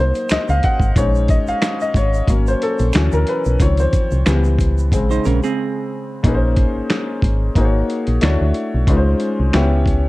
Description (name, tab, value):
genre	R&B, neo-soul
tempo	91 BPM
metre	4/4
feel	swing 55% on 16ths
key	Bb minor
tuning	A4 = 444 Hz
part	clear upright piano	accompaniment	0.0-10.1 s	Db3 to Gb5	-20 LUFS	left 2 dB	none
part	solid FM bass	bass	0.0-10.1 s	Ab1 to D2	-17 LUFS	equal	none
part	tube shaker and finger snaps	percussion	0.1-5.6 s	none	-35 LUFS	right 6 dB	none
part	dusty soul sampler-style drum kit	drums	0.2-10.0 s	finger snaps, hi-hat, kick drum, snare drum	-18 LUFS	equal	none
part	semi-hollow electric guitar	second line	5.1-6.2 s	C4 to C5	-21 LUFS	right 7 dB	none
room	small room ambience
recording	cassette tape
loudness	-14 LUFS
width	side -19 dB against mid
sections	0.0-6.2 A section; 6.2-10.1 B section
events	upright piano solo 0.0-6.2; break 5.6-6.2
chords	0.0 Cm7b5; 1.0 Bbm11; 2.3 Ab9sus4; 2.9 Dmaj9; 3.6 Dbmaj9; 4.3 C#m7b5; 4.9 Bbm9; 6.2 Bbm11; 7.6 Ab9sus4; 8.2 Dmaj9; 8.9 Dbmaj9; 9.5 C#m7b5